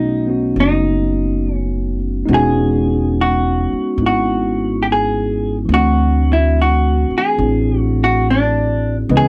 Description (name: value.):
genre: jazz ballad.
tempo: 70 BPM.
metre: 4/4.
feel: swing 68% on 8ths.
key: unclear.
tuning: A4 = 440 Hz.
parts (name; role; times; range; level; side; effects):
vintage hollow-body jazz guitar; melody; 0.0-9.3 s; D4 to G#4; -20 LUFS; equal; none.
mellow tine electric piano; accompaniment; 0.0-9.3 s; E3 to D#5; -21 LUFS; equal; none.
upright bass; bass; 0.0-9.3 s; E1 to D2; -20 LUFS; equal; none.
room: light reverb.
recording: none.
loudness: -16 LUFS.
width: mono.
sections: 0.0-9.3 A section.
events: none.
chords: 0.0 B7; 2.3 Emaj13; 5.7 D9.